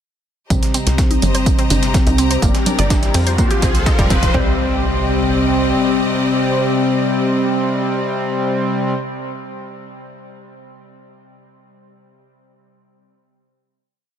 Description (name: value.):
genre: melodic techno.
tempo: 125 BPM.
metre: 4/4.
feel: straight.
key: C minor.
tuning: A4 = 440 Hz.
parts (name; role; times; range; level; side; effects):
wide unison lead; melody; 0.5-8.9 s; C4; -22 LUFS; left 2 dB; sidechain pumping, ping-pong delay.
clear symphonic string section; sustained chords; 0.5-8.9 s; C4 to C6; -26 LUFS; left 1 dB; sidechain pumping.
sync-sweep polysynth; stabs; 0.5-8.9 s; C3 to G4; -21 LUFS; equal; chorus, sidechain pumping, tape echo.
tight sequencer bass; bass; 0.5-5.7 s; F1 to F2; -20 LUFS; equal; tube saturation, sidechain pumping.
overtone-sweeping drone; drone; 1.9-9.0 s; C3; -31 LUFS; left 1 dB; none.
dusty soul sampler-style drum kit; drums; 0.5-4.3 s; hi-hat, snare drum, tambourine; -30 LUFS; equal; sidechain pumping on perc, high-pass filter on perc, high-pass filter on snare, sidechain pumping on hats, high-pass filter on hats.
electronic hi-hat and congas; drums; 0.5-4.3 s; none; -23 LUFS; right 2 dB; none.
electronic kick drum; drums; 0.5-4.5 s; none; -16 LUFS; equal; none.
riser and impact; sound effects; 1.8-9.2 s; none; -27 LUFS; equal; none.
analog pluck; arpeggios; 0.7-4.6 s; G3 to D5; -26 LUFS; right 1 dB; chorus, cassette tape, sidechain pumping, tape echo.
room: light reverb.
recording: none.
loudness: -14 LUFS.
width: side -9 dB against mid.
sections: 0.5-4.3 build; 4.3-8.2 final chord.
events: build-up 0.5-4.3; filter sweep on synth arpeggio sound 0.5-4.3; filter sweep on analog synth lead 0.5-4.3; filter sweep on analog polysynth 0.5-4.3; riser 1.8-4.3; drum fill 2.4-4.3.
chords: 0.5 Cm7; 2.4 Gm; 3.4 Fm; 4.3 Cm.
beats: | 0.50 0.98 1.46 1.94 | 2.42 2.90 3.38 3.86 | 4.34 4.82 5.30 5.78 | 6.26 6.74 7.22 7.70.